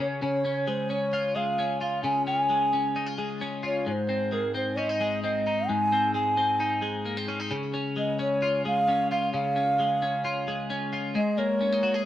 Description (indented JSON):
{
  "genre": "indie pop",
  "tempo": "132 BPM",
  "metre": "4/4",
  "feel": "straight",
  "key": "unclear",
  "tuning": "A4 = 442 Hz",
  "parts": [
    { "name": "breathy mellow bass bansuri", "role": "melody", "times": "0.0-12.0 s", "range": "Bb4 to Ab5", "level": "-26 LUFS", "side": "right 1 dB", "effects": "plate reverb" },
    { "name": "twelve-string electric guitar", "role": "arpeggios", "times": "0.0-12.1 s", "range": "Ab2 to Ab4", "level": "-28 LUFS", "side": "left 2 dB", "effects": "lush chorus" }
  ],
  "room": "moderate small room reverb, RT60 0.5 s",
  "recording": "rough home demo mix",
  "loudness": "-24 LUFS",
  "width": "side -12 dB against mid",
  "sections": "0.0-11.2 A section",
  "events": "none",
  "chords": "0.0 Db; 3.9 Ab; 7.5 Db; 11.2 Absus2"
}